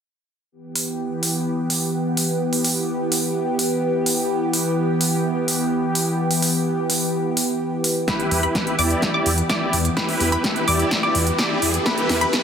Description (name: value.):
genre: EDM, festival progressive house.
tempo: 127 BPM.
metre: 4/4.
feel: straight.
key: E minor.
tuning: A4 = 440 Hz.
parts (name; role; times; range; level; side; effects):
lush unison pad; sustained chords; 0.5-12.4 s; E3 to G4; -22 LUFS; equal; chorus, phaser, sidechain pumping.
big-room dance drum kit; drums; 0.8-12.4 s; hi-hat, snare drum; -22 LUFS; equal; overdrive.
wide unison pluck; arpeggios; 8.1-12.4 s; B5 to D6; -26 LUFS; equal; sidechain pumping, tape echo.
big supersaw lead; riff; 8.1-12.4 s; E4 to D5; -23 LUFS; right 1 dB; sidechain pumping, low-pass filter, tape echo.
electronic kick drum; drums; 8.1-12.4 s; none; -30 LUFS; left 1 dB; overdrive, high-pass filter on kick, high-pass filter on room.
riser; sound effects; 9.9-12.4 s; none; -31 LUFS; left 1 dB; none.
wide detuned saw bass; bass; 8.3-12.2 s; E2; -24 LUFS; left 1 dB; chorus, tube saturation, sidechain pumping.
room: moderate huge ambient reverb, RT60 6.0 s.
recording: dense, heavily limited modern master, high-pass filter.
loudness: -18 LUFS.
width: side -7 dB against mid.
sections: 0.5-8.1 A section; 8.1-12.4 B section.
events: build-up 8.1-12.4; drum fill 8.1-12.4; filter sweep on supersaw synth 8.1-12.4; filter sweep on synth pluck 8.1-12.4.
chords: 0.5 Em.